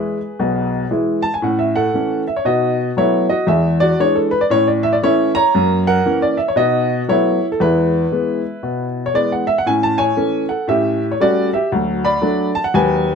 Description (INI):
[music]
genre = jazz, stride piano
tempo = 117 BPM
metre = 4/4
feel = swing 62% on 8ths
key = A major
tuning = A4 = 440 Hz
[part]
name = clear upright piano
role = solo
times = 0.0-13.2 s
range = B1 to B5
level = -14 LUFS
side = equal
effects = none
[sound]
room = moderate club reverb, RT60 0.7 s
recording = none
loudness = -14 LUFS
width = side -6 dB against mid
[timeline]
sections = 0.0-1.4 A section; 1.4-13.2 B section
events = none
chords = 0.0 E; 1.4 A; 2.5 B7; 3.5 E7; 4.5 A; 5.5 F#7; 6.6 B7; 7.6 E; 9.7 A; 10.7 A7; 11.7 D